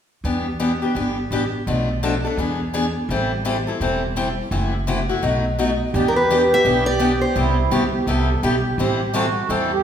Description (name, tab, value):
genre	acoustic string swing (jazz manouche)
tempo	169 BPM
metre	4/4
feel	swing 62% on 8ths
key	E minor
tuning	A4 = 440 Hz
part	picked steel-string acoustic guitar	accompaniment	0.2-9.7 s	B2 to A4	-21 LUFS	left 2 dB	none
part	upright bass	bass	0.2-9.8 s	E1 to E2	-25 LUFS	right 1 dB	none
part	accordion	second line	5.9-9.8 s	E4 to A4	-23 LUFS	right 5 dB	light tremolo tuning
part	picked steel-string acoustic guitar	melody	6.1-8.6 s	A#4 to E5	-20 LUFS	equal	none
room	wet recital hall reverb, RT60 1.7 s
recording	recorded in a church or concert hall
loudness	-18 LUFS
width	side -8 dB against mid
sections	0.2-5.9 A section; 5.9-9.8 B section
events	none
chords	0.2 Em7; 1.7 Bm7b5; 2.4 E7; 3.1 Am7; 4.5 F#m7b5; 5.2 B7; 5.9 Em7; 7.4 Cmaj7; 8.8 Am7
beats	| 0.24 0.60 0.95 1.31 | 1.67 2.02 2.38 2.73 | 3.09 3.45 3.80 4.16 | 4.51 4.87 5.23 5.58 | 5.94 6.29 6.65 7.00 | 7.36 7.71 8.07 8.43 | 8.78 9.14 9.49